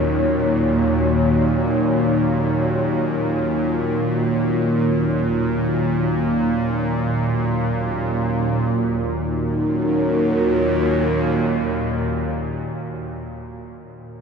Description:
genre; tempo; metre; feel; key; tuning
dark ambient drone; free time; none; none; Eb minor; A4 = 438 Hz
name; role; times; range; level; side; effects
dark analog pad; sustained chords; 0.0-13.7 s; Eb4 to Db5; -23 LUFS; equal; chorus
dark detuned synth bell; arpeggios; 0.0-14.2 s; Db4 to Bb4; -42 LUFS; right 2 dB; none
bowed-like drone; drone; 0.0-13.2 s; Eb2 to Bb2; -20 LUFS; equal; built-in reverb
room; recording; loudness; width
wet cathedral reverb, RT60 5.3 s; in a vast, echoing space; -18 LUFS; side -6 dB against mid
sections
0.0-8.8 A section; 8.8-13.0 B section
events
none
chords
0.0 Ebm7

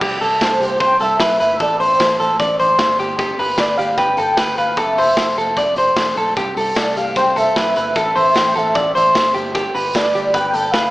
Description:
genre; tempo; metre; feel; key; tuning
jangly indie pop; 151 BPM; 4/4; straight; C major; A4 = 440 Hz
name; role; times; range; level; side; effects
electric guitar through a small old amp; arpeggios; 0.0-10.9 s; G4 to D5; -16 LUFS; equal; spring reverb
vintage muted picked electric bass; bass; 0.0-10.9 s; E1 to C2; -32 LUFS; equal; none
raw garage drum kit; drums; 0.0-10.8 s; crash cymbal, hi-hat, kick drum, snare drum; -21 LUFS; equal; none
warm velvety synth lead; melody; 0.4-10.9 s; C5 to G5; -19 LUFS; equal; chorus
tambourine; percussion; 6.4-10.8 s; none; -40 LUFS; right 4 dB; none
room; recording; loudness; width
moderate echo chamber reverb, RT60 1.8 s; small speaker sound; -14 LUFS; side -18 dB against mid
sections
0.0-10.9 A section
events
none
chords
0.0 C; 1.6 Am; 3.0 G; 4.8 Fmaj7; 6.4 C; 8.0 Am; 9.4 G

